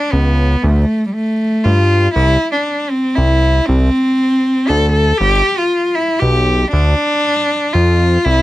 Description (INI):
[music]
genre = indie folk with a building arrangement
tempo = 118 BPM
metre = 3/4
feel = straight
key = unclear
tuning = A4 = 440 Hz
[part]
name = warm cello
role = melody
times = 0.0-8.4 s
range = G3 to A4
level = -14 LUFS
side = equal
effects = none
[part]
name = fat analog bass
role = bass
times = 0.1-8.4 s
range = G1 to G2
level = -13 LUFS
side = equal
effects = none
[sound]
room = little or no reverb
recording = dry, close 1970s-style studio recording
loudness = -12 LUFS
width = side -16 dB against mid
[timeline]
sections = 0.0-8.4 A section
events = none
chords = 0.0 G (rootless); 0.6 Dm; 2.2 Cadd9; 3.7 Amadd11/C; 5.2 G; 6.7 Dm